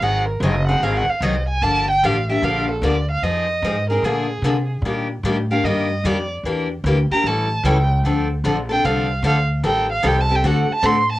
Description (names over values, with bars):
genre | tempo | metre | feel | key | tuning
acoustic string swing (jazz manouche) | 150 BPM | 4/4 | swing 64% on 8ths | D minor | A4 = 438 Hz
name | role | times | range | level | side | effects
dark violin | melody | 0.0-11.2 s | Ab4 to C6 | -21 LUFS | right 2 dB | cassette tape
picked steel-string acoustic guitar | accompaniment | 0.0-11.0 s | D3 to A4 | -22 LUFS | left 2 dB | cassette tape
upright bass | bass | 0.0-11.2 s | F#1 to C3 | -21 LUFS | equal | none
room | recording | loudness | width
moderate booth ambience, RT60 0.2 s | home recording on cassette | -17 LUFS | side -16 dB against mid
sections
0.0-11.2 A section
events
violin solo 0.0-11.2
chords
0.0 G#7; 1.6 Gm7; 3.2 Fm7; 4.0 Bb7; 4.8 Ebmaj7; 6.4 Em7b5; 7.2 A7; 8.0 Dm7; 9.6 Am7b5; 10.4 D7